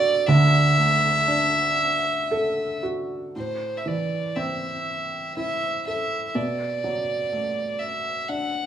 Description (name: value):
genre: celtic folk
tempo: 56-63 BPM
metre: 3/4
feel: rubato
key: A dorian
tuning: A4 = 440 Hz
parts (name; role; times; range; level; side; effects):
- dark fiddle; melody; 0.0-8.7 s; C5 to F#5; -23 LUFS; right 1 dB; none
- felt-muted upright piano; accompaniment; 0.0-8.7 s; B1 to A4; -25 LUFS; right 1 dB; none
room: moderate recital hall reverb, RT60 1.4 s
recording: small room ambience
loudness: -21 LUFS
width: side -10 dB against mid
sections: 0.0-3.4 A section; 3.4-8.7 B section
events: none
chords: 0.3 Dadd9; 3.4 Am; 6.4 Bm7